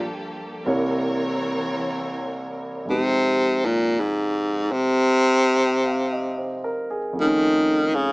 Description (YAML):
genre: jazz ballad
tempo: 56 BPM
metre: 4/4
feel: swing 69% on 8ths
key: F minor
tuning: A4 = 439 Hz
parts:
  - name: clear baritone saxophone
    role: melody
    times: 0.0-8.1 s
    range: Ab2 to Eb3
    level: -19 LUFS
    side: equal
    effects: none
  - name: warm grand piano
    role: accompaniment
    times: 0.0-8.1 s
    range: C2 to G5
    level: -26 LUFS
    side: right 1 dB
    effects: none
  - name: warm studio string section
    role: sustained chords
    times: 0.0-2.8 s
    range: E3 to Db5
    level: -30 LUFS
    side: left 1 dB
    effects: none
room: light reverb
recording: small speaker sound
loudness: -20 LUFS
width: side -26 dB against mid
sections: 0.0-2.8 A section; 2.8-8.1 B section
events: baritone saxophone solo 0.0-2.8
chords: 0.0 Gm9; 0.7 C7b9; 2.8 Fm9; 7.2 F7b13